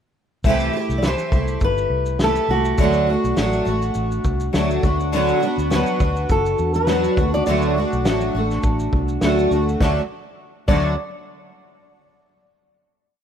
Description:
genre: acoustic pop.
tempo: 103 BPM.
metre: 4/4.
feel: swing 55% on 16ths.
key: D mixolydian.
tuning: A4 = 440 Hz.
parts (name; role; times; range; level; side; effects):
picked twelve-string acoustic guitar; accompaniment; 0.4-10.9 s; C3 to G4; -20 LUFS; right 1 dB; double-tracked left and right.
vintage muted fingered electric bass; bass; 0.4-11.0 s; F#1 to E2; -23 LUFS; equal; none.
loose indie drum kit; drums; 0.4-10.8 s; crash cymbal, kick drum, shaker, snare drum; -22 LUFS; equal; none.
fingerpicked steel-string acoustic guitar; melody; 1.0-10.9 s; F#4 to D5; -23 LUFS; left 2 dB; none.
room: studio ambience.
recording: rough home demo mix.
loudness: -17 LUFS.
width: side -8 dB against mid.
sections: 0.4-9.8 chorus; 9.8-12.1 final chord.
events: none.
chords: 0.4 C6; 2.8 D; 4.8 Bm/D; 7.2 D.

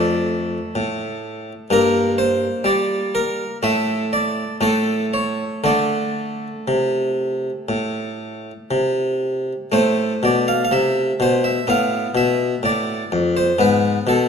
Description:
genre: classical, baroque-style suite movement for harpsichord.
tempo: 61 BPM.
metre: 4/4.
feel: uneven beats, rubato.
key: D minor, A minor from 9.7 s.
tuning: A4 = 440 Hz.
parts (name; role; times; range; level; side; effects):
harpsichord; solo; 0.0-14.3 s; F2 to F5; -18 LUFS; equal; none.
room: wet recital hall reverb, RT60 1.6 s.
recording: none.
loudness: -17 LUFS.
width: side -6 dB against mid.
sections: 0.0-9.7 A section; 9.7-14.3 A section.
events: none.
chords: 0.0 Dm/F; 1.7 Gm; 3.6 N.C.; 5.6 D5; 9.7 Am; 11.7 Fmaj7#11; 13.6 E/G# (rootless).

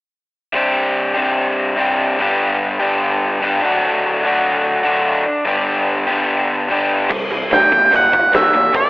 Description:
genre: classic rock.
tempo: 146 BPM.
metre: 4/4.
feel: straight.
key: unclear.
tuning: A4 = 442 Hz.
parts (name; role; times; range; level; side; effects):
crunchy overdriven guitar; riff; 0.5-8.9 s; G2 to G4; -16 LUFS; left 1 dB; none.
overdriven electric guitar; riff; 7.1-8.9 s; G2 to Bb3; -24 LUFS; right 2 dB; slapback echo.
fingered electric bass; bass; 7.1-8.9 s; G1 to E2; -33 LUFS; equal; none.
big rock drum kit; drums; 7.1-8.8 s; crash cymbal, hi-hat, kick drum, snare drum; -17 LUFS; equal; none.
octave-fuzz lead guitar; melody; 7.5-8.9 s; D5 to G5; -11 LUFS; right 1 dB; distortion.
room: wet lush hall reverb, RT60 1.6 s, studio reverb.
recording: big arena sound, telephone sound.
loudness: -14 LUFS.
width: side -21 dB against mid.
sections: 0.5-7.1 A section; 7.1-8.9 B section.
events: none.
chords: 0.5 Csus2; 2.2 G; 3.6 D; 5.5 G; 7.1 C5.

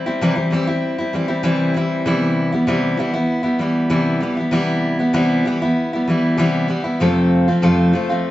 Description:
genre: rock.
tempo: 97 BPM.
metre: 4/4.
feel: straight.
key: C major.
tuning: A4 = 440 Hz.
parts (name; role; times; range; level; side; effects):
picked steel-string acoustic guitar; solo; 0.0-8.3 s; F2 to F4; -16 LUFS; equal; none.
room: moderate stone room reverb, RT60 1.1 s.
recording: band playing live in one room, nothing above 7.8 kHz.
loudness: -16 LUFS.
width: side -15 dB against mid.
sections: 0.0-2.1 A section; 2.1-8.3 B section.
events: none.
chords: 0.0 C; 2.1 Cmaj7; 7.0 F.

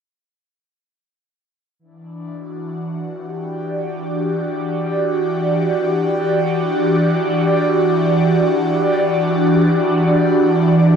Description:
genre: ambient.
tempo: free time.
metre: none.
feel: none.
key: E minor.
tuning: A4 = 441 Hz.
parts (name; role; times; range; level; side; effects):
airy breathy pad; sustained chords; 1.8-11.0 s; E3 to D5; -15 LUFS; equal; chorus, phaser.
room: wet cathedral reverb, RT60 6.1 s.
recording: dark, warm production.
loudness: -15 LUFS.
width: side -7 dB against mid.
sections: 1.8-11.0 A section.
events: fade-in on analog synth pad 1.8-11.0.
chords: 1.8 Em7.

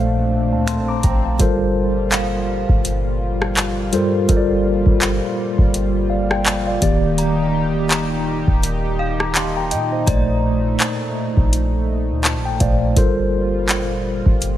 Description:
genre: contemporary R&B.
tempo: 83 BPM.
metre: 4/4.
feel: swing 58% on 16ths.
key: G minor.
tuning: A4 = 441 Hz.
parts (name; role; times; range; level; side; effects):
mellow tine electric piano; accompaniment; 0.0-14.6 s; Bb2 to D6; -20 LUFS; equal; medium stereo tremolo.
chorused pulse-width pad; sustained chords; 0.0-14.6 s; Bb2 to G4; -26 LUFS; equal; none.
clean 808-style bass; bass; 0.0-14.6 s; Eb1 to Bb2; -22 LUFS; equal; none.
swell; sound effects; 0.0-1.4 s; none; -32 LUFS; left 4 dB; none.
booming analog drum machine; drums; 0.7-14.6 s; finger snaps, handclaps, hi-hat, kick drum, rim click; -19 LUFS; equal; none.
synth chime; texture; 2.1-12.5 s; F5 to Bb5; -30 LUFS; equal; ensemble chorus, phaser, digital delay.
room: light reverb.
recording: lossy compression artefacts.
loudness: -16 LUFS.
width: side -12 dB against mid.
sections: 0.0-1.4 A section; 1.4-14.6 B section.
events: swell 0.0-1.4; tine electric piano fill 11.9-13.0.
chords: 0.0 Bbmaj9; 1.4 Gm11; 6.8 Ebmaj7; 10.1 Bbmaj9; 13.0 Gm11.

